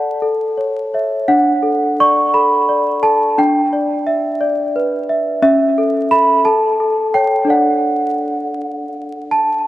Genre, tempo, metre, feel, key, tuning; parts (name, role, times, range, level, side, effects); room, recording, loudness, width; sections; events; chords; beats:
classical, lullaby for celesta; 57 BPM (dotted quarters); 6/8; straight; D major; A4 = 439 Hz
celesta; solo; 0.0-9.7 s; C#4 to C#6; -13 LUFS; equal; analog delay
moderate spring reverb, RT60 2.5 s; vinyl crackle; -13 LUFS; side -15 dB against mid
0.0-9.7 A section
0.2 A; 1.3 D; 3.4 Em7/D; 5.4 A/C#; 6.4 A; 7.5 D
0.23 | 1.28 2.34 | 3.38 4.40 | 5.42 6.45 | 7.50 8.57